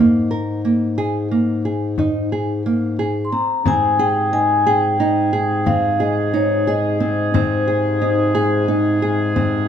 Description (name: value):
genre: contemporary instrumental, chamber music in an uneven meter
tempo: 179 BPM (eighths)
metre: 11/8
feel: straight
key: Ab major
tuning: A4 = 439 Hz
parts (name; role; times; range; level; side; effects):
- vibraphone with medium mallets; melody; 0.0-8.6 s; C5 to C6; -20 LUFS; left 1 dB; none
- nylon-string guitar; arpeggios; 0.0-9.7 s; Bb3 to Bb4; -20 LUFS; right 3 dB; none
- mellow bass clarinet; bass; 0.0-9.7 s; Ab2; -21 LUFS; left 3 dB; none
- frame drum; percussion; 2.0-9.7 s; none; -24 LUFS; left 4 dB; none
- warm woodwind section; sustained chords; 3.7-9.7 s; C3 to Ab4; -24 LUFS; right 1 dB; none
room: light reverb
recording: close, detailed microphones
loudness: -16 LUFS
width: side -8 dB against mid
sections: 0.0-3.7 A section; 3.7-9.7 B section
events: none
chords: 0.0 Absus2; 3.7 Abmaj7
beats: 0.30 0.64 0.97 1.31 1.65 1.98 2.32 2.65 2.99 3.32 | 3.66 4.00 4.33 4.67 5.00 5.34 5.67 6.01 6.34 6.68 7.01 | 7.35 7.68 8.02 8.36 8.69 9.03 9.36